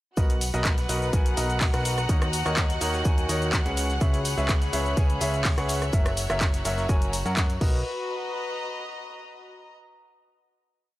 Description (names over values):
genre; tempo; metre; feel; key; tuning
piano house; 125 BPM; 4/4; straight; B major; A4 = 440 Hz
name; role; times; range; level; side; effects
warm studio violin section; sustained chords; 0.2-7.6 s; F#5 to F#6; -36 LUFS; right 1 dB; sidechain pumping
bright baby grand piano; riff; 0.2-7.8 s; D#3 to G#5; -30 LUFS; equal; sidechain pumping, tape echo
fat analog bass; bass; 0.2-7.8 s; F#1 to F#2; -29 LUFS; equal; sidechain pumping
breakbeat sampler-style drum kit; drums; 0.2-7.5 s; hi-hat, shaker, snare drum; -41 LUFS; right 1 dB; none
electronic kick drum; drums; 0.2-7.7 s; none; -24 LUFS; equal; none
punchy analog drum machine; drums; 0.2-7.7 s; crash cymbal, handclaps, hi-hat, rim click, shaker; -30 LUFS; equal; overdrive
tambourine; percussion; 0.2-7.8 s; none; -44 LUFS; right 2 dB; none
rich chamber string section; texture; 0.2-9.7 s; F#4 to B5; -33 LUFS; left 2 dB; sidechain pumping
room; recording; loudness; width
small room ambience; dry, gritty hardware recording; -22 LUFS; side -16 dB against mid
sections
0.2-7.9 drop; 7.9-9.8 final chord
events
drop 0.2-7.9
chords
0.2 Bmaj7; 2.1 D#m7; 3.8 C#m7; 5.9 F#7; 7.6 Bmaj7